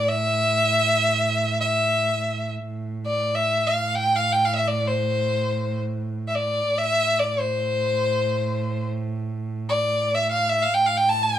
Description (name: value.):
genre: Turkish makam ensemble.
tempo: free time.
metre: none.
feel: none.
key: A minor.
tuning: A4 = 440 Hz.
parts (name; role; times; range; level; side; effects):
clear violin; melody; 0.0-11.4 s; C5 to A5; -21 LUFS; left 1 dB; plate reverb.
muted cello; drone; 0.0-11.4 s; A2; -28 LUFS; right 3 dB; none.
room: moderate small room ambience, RT60 0.5 s.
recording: none.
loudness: -20 LUFS.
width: side -11 dB against mid.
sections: 0.0-11.4 A section.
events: none.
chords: none.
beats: free time.